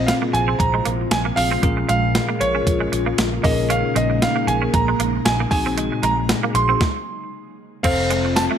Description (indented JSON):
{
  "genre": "1980s-style pop",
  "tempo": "116 BPM",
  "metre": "4/4",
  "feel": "swing 55% on 16ths",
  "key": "unclear",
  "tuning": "A4 = 441 Hz",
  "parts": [
    { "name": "clear concert grand piano", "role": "melody", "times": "0.0-8.4 s", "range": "Db5 to C6", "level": "-22 LUFS", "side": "right 3 dB", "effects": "digital delay" },
    { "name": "bell-like tine electric piano", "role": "accompaniment", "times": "0.0-8.6 s", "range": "Bb2 to C5", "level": "-24 LUFS", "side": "left 4 dB", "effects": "phaser" },
    { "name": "ethereal airy pad", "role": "sustained chords", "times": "0.0-8.6 s", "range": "C3 to F4", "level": "-27 LUFS", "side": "left 1 dB", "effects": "ensemble chorus, built-in reverb, phaser" },
    { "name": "vintage muted fingered electric bass", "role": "bass", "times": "0.0-8.5 s", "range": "F1 to Bb1", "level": "-24 LUFS", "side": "equal", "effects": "none" },
    { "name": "clean 12-bit digital drum machine", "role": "drums", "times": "0.1-8.5 s", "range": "crash cymbal, hi-hat, kick drum, snare drum, tambourine", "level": "-22 LUFS", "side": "equal", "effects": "none" },
    { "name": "twangy electric guitar", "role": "riff", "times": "0.2-8.6 s", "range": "Ab3 to Db4", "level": "-27 LUFS", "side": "right 7 dB", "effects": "ensemble chorus, digital delay" },
    { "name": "raw garage guitar", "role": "accompaniment", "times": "7.8-8.6 s", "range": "F2 to F3", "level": "-30 LUFS", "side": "right 1 dB", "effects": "overdrive, analog chorus" }
  ],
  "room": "light reverb, digital ambience",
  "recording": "none",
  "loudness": "-17 LUFS",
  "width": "side -8 dB against mid",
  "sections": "0.0-7.8 A section",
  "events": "stop 6.8-7.8",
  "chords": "0.0 Fm/Bb; 1.6 Bbm7; 3.4 Eb7sus4/Bb; 5.5 Ab7/Bb; 7.8 F",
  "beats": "0.08 0.60 1.12 | 1.64 2.15 2.67 3.19 | 3.71 4.22 4.74 5.26 | 5.77 6.29 6.81 7.33 | 7.84 8.36"
}